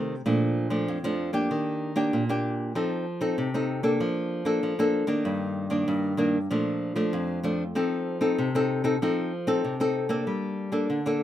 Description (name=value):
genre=samba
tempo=96 BPM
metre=4/4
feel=straight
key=unclear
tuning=A4 = 440 Hz
part: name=nylon-string guitar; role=solo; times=0.0-11.2 s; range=F2 to A4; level=-24 LUFS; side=equal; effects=none
room=light reverb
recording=minimal, uncompressed stereo recording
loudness=-24 LUFS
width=side -11 dB against mid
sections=0.0-10.3 A section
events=none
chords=0.3 Bbmaj7; 1.5 Ebmaj7; 2.8 F7; 4.0 Bbmaj7/F; 5.3 Ebmaj7/G; 6.5 Bbmaj7; 7.8 F7; 10.3 Gmadd9